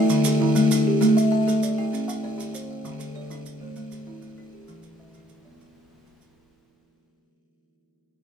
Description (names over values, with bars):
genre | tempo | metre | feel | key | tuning
southern african traditional, mbira-style interlocking cycle | 131 BPM (dotted quarters) | 12/8 | straight | unclear | A4 = 440 Hz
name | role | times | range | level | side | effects
buzzing kalimba | arpeggios | 0.0-6.7 s | D3 to G5+29c | -22 LUFS | left 3 dB | none
kalimba | arpeggios | 0.0-6.7 s | D3 to A5 | -25 LUFS | right 6 dB | none
maracas | percussion | 0.1-6.4 s | none | -33 LUFS | right 6 dB | none
room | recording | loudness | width
wet studio reverb, RT60 0.6 s | small room ambience | -19 LUFS | side -7 dB against mid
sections
0.0-6.5 A section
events
fade-out 0.0-6.5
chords
0.1 D5; 1.0 A5; 1.9 C5; 2.9 D5; 4.7 E5